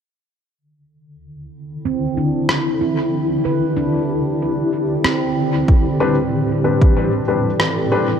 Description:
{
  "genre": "ambient dub",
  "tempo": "94 BPM",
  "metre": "4/4",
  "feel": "swing 55% on 16ths",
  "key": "unclear",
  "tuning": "A4 = 440 Hz",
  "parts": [
    { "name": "granular cloud pad", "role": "sustained chords", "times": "1.4-8.2 s", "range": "A2 to D5", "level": "-19 LUFS", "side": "left 1 dB", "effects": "built-in reverb" },
    { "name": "handpan", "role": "arpeggios", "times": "1.9-7.2 s", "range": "C4 to B4", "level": "-23 LUFS", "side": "right 6 dB", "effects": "low-pass filter, dub echo" },
    { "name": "electronic rim click", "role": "drums", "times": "2.5-7.7 s", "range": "none", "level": "-23 LUFS", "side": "equal", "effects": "dub echo" },
    { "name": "electronic kick drum", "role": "drums", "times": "5.7-6.9 s", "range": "none", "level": "-12 LUFS", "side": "equal", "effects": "none" },
    { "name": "dark upright piano", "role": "stabs", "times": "6.0-8.1 s", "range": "G3 to B4", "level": "-19 LUFS", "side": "left 4 dB", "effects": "dub echo" }
  ],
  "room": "moderate huge ambient reverb, RT60 4.8 s",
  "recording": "none",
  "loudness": "-16 LUFS",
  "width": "side -8 dB against mid",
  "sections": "0.6-8.2 A section",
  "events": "filter sweep on ambient pad 0.6-8.2",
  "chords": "0.6 D7sus4; 5.7 Am11"
}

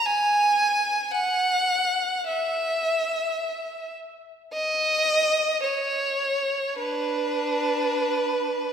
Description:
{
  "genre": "classical, free, expressive piece for unaccompanied violin",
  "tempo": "40-58 BPM",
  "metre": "4/4",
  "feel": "rubato",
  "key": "unclear",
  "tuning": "A4 = 441 Hz",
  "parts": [
    { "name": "rich violin", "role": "solo", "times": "0.0-8.7 s", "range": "D4 to G#5", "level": "-22 LUFS", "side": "right 1 dB", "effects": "none" }
  ],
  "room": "wet concert hall reverb, RT60 2.1 s",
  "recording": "minimal, uncompressed stereo recording",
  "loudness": "-22 LUFS",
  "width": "side -8 dB against mid",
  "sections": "0.0-8.7 A section",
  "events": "none",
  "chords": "none"
}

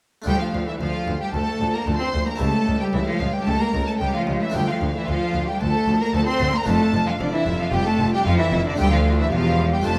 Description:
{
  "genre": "classical, baroque-style concerto movement with solo episodes",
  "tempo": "112 BPM",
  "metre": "4/4",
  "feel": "straight",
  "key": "D minor",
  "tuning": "A4 = 439 Hz",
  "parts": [
    { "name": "harpsichord", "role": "accompaniment", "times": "0.2-10.0 s", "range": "C#2 to G4", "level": "-33 LUFS", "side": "equal", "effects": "none" },
    { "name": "rich cello", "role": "melody", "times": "0.3-10.0 s", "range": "D3 to C4", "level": "-27 LUFS", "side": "equal", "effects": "none" },
    { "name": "rich studio violin section", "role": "melody", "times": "0.3-10.0 s", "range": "D5 to C6", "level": "-30 LUFS", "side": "equal", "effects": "none" },
    { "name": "warm symphonic violin section", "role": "second line", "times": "0.3-10.0 s", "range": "D4 to C5", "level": "-30 LUFS", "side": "equal", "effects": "none" },
    { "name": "clear studio viola section", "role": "accompaniment", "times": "0.3-10.0 s", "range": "F3 to G4", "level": "-33 LUFS", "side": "equal", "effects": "none" },
    { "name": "rich chamber double bass section", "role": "bass", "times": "0.3-10.0 s", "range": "E1 to D2", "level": "-28 LUFS", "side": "equal", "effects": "none" },
    { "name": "rich studio cello section", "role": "bass", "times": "0.3-10.0 s", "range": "C#2 to F2", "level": "-30 LUFS", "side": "equal", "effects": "none" }
  ],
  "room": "moderate scoring stage reverb, RT60 1.7 s",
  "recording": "none",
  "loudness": "-21 LUFS",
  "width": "mono",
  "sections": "0.3-10.0 A section",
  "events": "none",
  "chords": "0.3 Dm; 2.4 A7/C#; 4.5 Dm; 6.7 Dm/F; 8.8 Dm"
}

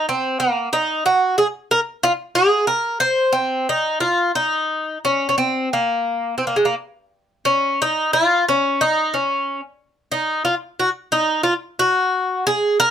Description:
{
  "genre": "fado",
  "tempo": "90 BPM",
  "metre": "4/4",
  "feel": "rubato",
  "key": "Bb minor, Db major from 7.1 s",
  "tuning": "A4 = 440 Hz",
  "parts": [
    { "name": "Irish bouzouki", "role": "solo", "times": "0.0-12.9 s", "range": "Ab3 to C5", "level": "-16 LUFS", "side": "equal", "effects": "none" }
  ],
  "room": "light reverb",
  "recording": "none",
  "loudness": "-17 LUFS",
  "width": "side -9 dB against mid",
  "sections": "0.0-7.1 A section; 7.1-12.9 B section",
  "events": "none",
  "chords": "none"
}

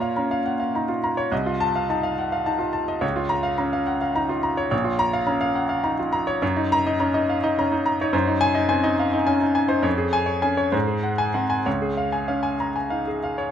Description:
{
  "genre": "classical, virtuoso piano study",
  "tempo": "63-72 BPM (dotted quarters)",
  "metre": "6/8",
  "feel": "rubato",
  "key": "Bb minor, Db major from 6.4 s",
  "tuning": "A4 = 445 Hz",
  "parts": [
    { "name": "clear baby grand piano", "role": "solo", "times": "0.0-13.5 s", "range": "Bb1 to Bb5", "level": "-20 LUFS", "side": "equal", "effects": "none" }
  ],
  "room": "light reverb",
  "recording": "close, detailed microphones",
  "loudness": "-20 LUFS",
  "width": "side -9 dB against mid",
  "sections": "0.0-13.5 A section",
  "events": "none",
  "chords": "0.0 Bbm; 1.3 F7/C; 3.0 Bbm/Db; 4.7 Bbm; 6.4 Ebm7/Gb; 8.1 Ab7/Gb; 9.9 Db/F; 10.7 Ab7; 11.7 Db"
}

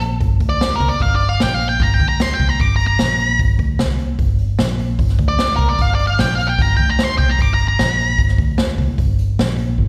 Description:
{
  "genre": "blues rock power trio and southern rock",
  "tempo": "150 BPM",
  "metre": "4/4",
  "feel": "straight",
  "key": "unclear",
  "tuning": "A4 = 444 Hz",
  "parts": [
    { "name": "vintage muted fingered electric bass", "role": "bass", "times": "0.0-9.9 s", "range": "G1 to D2", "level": "-21 LUFS", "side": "equal", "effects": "none" },
    { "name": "jazz brush drum kit", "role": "drums", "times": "0.0-9.9 s", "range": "hi-hat, kick drum, snare drum", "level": "-21 LUFS", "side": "equal", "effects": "none" },
    { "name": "octave-fuzz lead guitar", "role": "melody", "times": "0.5-8.2 s", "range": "Bb4 to D6", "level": "-21 LUFS", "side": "equal", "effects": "distortion, slapback echo" }
  ],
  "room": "small room ambience",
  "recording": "live gig heard through the venue's PA, recital hall reverb",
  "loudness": "-17 LUFS",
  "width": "mono",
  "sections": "0.0-9.9 A section",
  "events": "lead electric guitar solo 0.0-9.9",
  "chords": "0.4 N.C.; 0.8 G7(no3); 1.4 Gm7/Bb; 1.8 Gm; 2.0 Gmadd11/D (rootless); 2.4 Gmadd11; 3.0 N.C.; 3.4 G5; 3.8 N.C.; 5.6 G7(no3); 6.2 Gm7/Bb; 6.6 Gm; 6.8 Gmadd11/D (rootless); 7.2 Gmadd11; 7.8 N.C.; 8.8 Gsus4; 9.4 N.C."
}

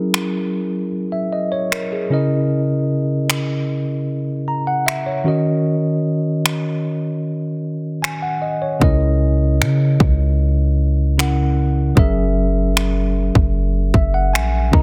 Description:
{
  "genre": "contemporary R&B",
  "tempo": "76 BPM",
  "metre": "4/4",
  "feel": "straight",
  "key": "unclear",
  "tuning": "A4 = 440 Hz",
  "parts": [
    { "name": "tine electric piano", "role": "accompaniment", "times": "0.0-14.8 s", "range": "C#3 to A#5", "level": "-21 LUFS", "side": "equal", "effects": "none" },
    { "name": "trap drum kit", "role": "drums", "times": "0.1-14.8 s", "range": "finger snaps, kick drum", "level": "-22 LUFS", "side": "equal", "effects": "soft clipping on snare" },
    { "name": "warm 808-style bass", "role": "bass", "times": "8.8-14.8 s", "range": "F#1 to C#3", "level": "-20 LUFS", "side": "equal", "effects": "none" }
  ],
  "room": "digital ambience",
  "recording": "dense, heavily limited modern master",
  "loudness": "-18 LUFS",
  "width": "mono",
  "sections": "0.0-14.8 A section",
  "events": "break 0.0-8.8; tine electric piano fill 13.5-14.8",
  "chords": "0.0 F#9; 2.1 C#m69; 5.3 D#m7; 8.8 C#m69; 12.0 F#9"
}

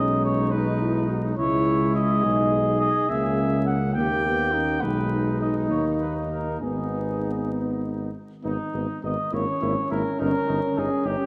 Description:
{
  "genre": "classical, brass quintet",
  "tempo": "68 BPM (dotted quarters)",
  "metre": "6/8",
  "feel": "uneven beats, rubato",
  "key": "G# minor",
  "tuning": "A4 = 440 Hz",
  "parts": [
    { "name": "warm cornet", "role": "melody", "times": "0.0-11.3 s", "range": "D#4 to G5", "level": "-30 LUFS", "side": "equal", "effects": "none" },
    { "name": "mellow trumpet", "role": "second line", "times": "0.0-11.2 s", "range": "D#4 to G#4", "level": "-34 LUFS", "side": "equal", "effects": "none" },
    { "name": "mellow French horn", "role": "accompaniment", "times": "0.0-11.3 s", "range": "G#3 to C#4", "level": "-32 LUFS", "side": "equal", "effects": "none" },
    { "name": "warm euphonium", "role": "accompaniment", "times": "0.0-11.2 s", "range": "A#3 to F#4", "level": "-32 LUFS", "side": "equal", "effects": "none" },
    { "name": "warm tuba", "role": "bass", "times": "0.0-11.2 s", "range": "G1 to D#2", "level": "-29 LUFS", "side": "equal", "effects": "none" }
  ],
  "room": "wet concert hall reverb, RT60 2.2 s",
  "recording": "dark, warm production, vinyl crackle",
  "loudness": "-24 LUFS",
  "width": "mono",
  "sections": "0.0-8.4 A section; 8.4-11.3 B section",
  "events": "none",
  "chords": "0.0 G#m/B; 1.4 C#m; 2.2 G#m/B; 3.1 A#m7b5/C#; 4.0 D#; 4.8 G#m/B; 5.7 D#5; 6.6 G#m; 9.3 A#m7b5/G#; 10.2 D#7/G"
}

